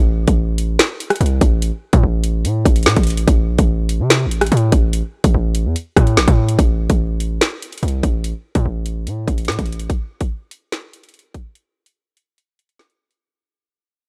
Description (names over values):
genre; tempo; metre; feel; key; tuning
hip hop, drill; 145 BPM; 4/4; half-time; A phrygian; A4 = 440 Hz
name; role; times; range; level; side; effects
distorted 808-style bass; bass; 0.0-9.9 s; A1 to C3; -20 LUFS; equal; distortion
drill drum kit; drums; 0.3-13.2 s; hi-hat, kick drum, rim click, snare drum; -18 LUFS; equal; none
room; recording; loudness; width
little or no reverb; dry, gritty hardware recording; -17 LUFS; mono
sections
0.0-6.6 A section; 6.6-13.2 B section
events
fade-out 6.6-13.2; break 12.4-13.2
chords
none